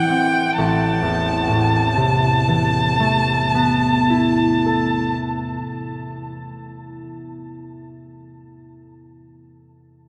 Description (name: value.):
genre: classical, impressionist duo for violin and harp.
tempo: 42 BPM.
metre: 4/4.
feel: rubato.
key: A minor.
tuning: A4 = 441 Hz.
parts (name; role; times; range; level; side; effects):
clear violin; melody; 0.0-5.1 s; G5 to A5; -23 LUFS; equal; none.
concert harp; accompaniment; 0.0-7.7 s; A1 to A4; -22 LUFS; equal; none.
room: wet cathedral reverb, RT60 6.8 s.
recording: in a vast, echoing space.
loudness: -18 LUFS.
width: mono.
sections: 0.6-6.2 A section.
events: none.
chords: 0.0 Am; 0.6 Amadd9.